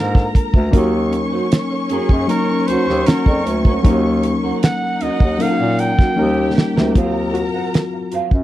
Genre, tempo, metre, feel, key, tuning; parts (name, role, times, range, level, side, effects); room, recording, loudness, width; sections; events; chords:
lush 1970s-style soul; 77 BPM; 4/4; straight; Eb dorian; A4 = 435 Hz
warm flugelhorn; melody; 0.0-6.6 s; Ab4 to G5; -23 LUFS; right 1 dB; tape echo
warm studio violin section; second line; 0.0-8.1 s; Db4 to Db6; -25 LUFS; left 1 dB
reed electric piano; accompaniment; 0.0-8.4 s; F3 to Bb4; -20 LUFS; left 2 dB; overdrive
warm bass clarinet; bass; 0.0-8.4 s; D2 to Bb2; -21 LUFS; equal
damped 70s drum kit; drums; 0.1-8.4 s; hi-hat, kick drum, snare drum; -14 LUFS; equal
electric guitar through a small old amp; riff; 0.7-8.4 s; Db4 to Gb5; -24 LUFS; right 5 dB; analog chorus
little or no reverb; dry, close 1970s-style studio recording; -14 LUFS; side -14 dB against mid
0.0-7.0 A section; 7.0-8.4 B section
drum fill 6.2-7.0; reed electric piano solo 7.0-8.4
0.0 Bb7; 0.7 Ebm7; 6.2 Eb7; 7.0 Ebm69